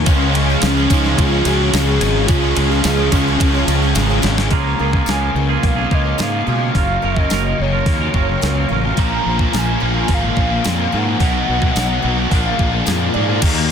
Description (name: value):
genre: rock, shoegaze and dream pop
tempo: 108 BPM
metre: 4/4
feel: straight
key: Db major, Db mixolydian from 4.5 s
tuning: A4 = 440 Hz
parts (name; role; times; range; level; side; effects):
- soft string machine; sustained chords; 0.0-13.7 s; Gb4 to Db6; -29 LUFS; equal; ensemble chorus
- picked twelve-string acoustic guitar; arpeggios; 0.0-13.4 s; F3 to Ab4; -28 LUFS; right 14 dB; ensemble chorus, digital delay
- thick fuzz guitar; riff; 0.0-13.7 s; Gb2 to Eb4; -22 LUFS; left 12 dB; distortion, ensemble chorus
- twangy electric guitar; riff; 0.0-13.7 s; Bb2 to C5; -26 LUFS; right 14 dB; reverse reverb
- fuzz fingered electric bass; bass; 0.0-13.7 s; Gb1 to Cb3; -19 LUFS; equal; overdrive
- sludgy distorted guitar; riff; 0.1-4.5, 9.0-13.7 s; Bb2 to Eb4; -21 LUFS; right 2 dB; overdrive
- crisp 8-bit digital drum machine; drums; 0.1-13.6 s; crash cymbal, hi-hat, kick drum, ride cymbal, snare drum; -19 LUFS; equal; none
- tambourine; percussion; 0.1-13.5 s; none; -32 LUFS; left 11 dB; none
- pure sine lead; melody; 0.7-12.9 s; Db4 to Bb5; -23 LUFS; equal; chorus, digital delay
room: digital ambience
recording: dense, heavily limited modern master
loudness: -14 LUFS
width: side -7 dB against mid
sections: 0.0-4.5 A section; 4.5-13.4 B section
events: drum fill 4.0-4.5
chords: 0.1 Db; 4.5 Db6; 6.8 Gbmaj7; 9.0 Bbm9; 11.2 Cbmaj7; 12.3 Bb7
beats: | 0.07 0.62 1.18 1.74 | 2.30 2.85 3.41 3.97 | 4.52 5.08 5.64 6.20 | 6.75 7.31 7.87 8.42 | 8.98 9.53 10.09 10.65 | 11.20 11.76 12.31 12.87 | 13.43